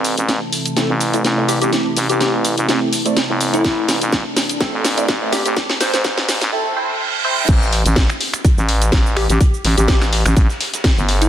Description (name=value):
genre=bass house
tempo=125 BPM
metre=4/4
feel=swing 54% on 16ths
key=A minor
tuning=A4 = 440 Hz
part: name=sweeping resonant pad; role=sustained chords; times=0.0-6.5 s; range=C3 to E4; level=-25 LUFS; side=equal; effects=wide subtle chorus, sidechain pumping
part: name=growling FM bass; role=bass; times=0.0-11.3 s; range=G1 to A1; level=-18 LUFS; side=equal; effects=sidechain pumping, high-pass filter
part: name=garage drum kit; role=drums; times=0.0-11.3 s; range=cabasa, crash cymbal, finger snaps, hi-hat, snare drum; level=-20 LUFS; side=equal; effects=none
part: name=warbly tape-like pad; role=texture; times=0.0-6.5 s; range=C4 to A5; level=-30 LUFS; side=right 3 dB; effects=none
part: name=band-passed chord stab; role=stabs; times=0.8-7.5 s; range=A3 to D5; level=-23 LUFS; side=right 2 dB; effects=phaser, wide subtle chorus, sidechain pumping, tape echo
part: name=plucky unison lead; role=melody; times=1.5-6.0, 9.2-11.3 s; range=E4 to C5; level=-23 LUFS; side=left 1 dB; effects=tape echo
part: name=electronic kick drum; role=drums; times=3.6-10.9 s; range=none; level=-15 LUFS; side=equal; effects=none
part: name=reverse cymbal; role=sound effects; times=6.7-7.5 s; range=none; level=-22 LUFS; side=right 6 dB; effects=none
part: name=dusty soul sampler-style drum kit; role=drums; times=7.5-11.2 s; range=hi-hat, snare drum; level=-29 LUFS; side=left 1 dB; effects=none
room=moderate lush hall reverb, RT60 1.9 s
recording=dense, heavily limited modern master, high-pass filter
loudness=-14 LUFS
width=side -10 dB against mid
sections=0.0-7.5 A section; 7.5-11.3 B section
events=build-up 0.0-7.5; drum fill 0.0-6.5; filter sweep on synth stab 0.0-7.5; reverse cymbal 6.7-7.5; drop 7.5-11.3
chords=0.0 Am; 7.5 N.C.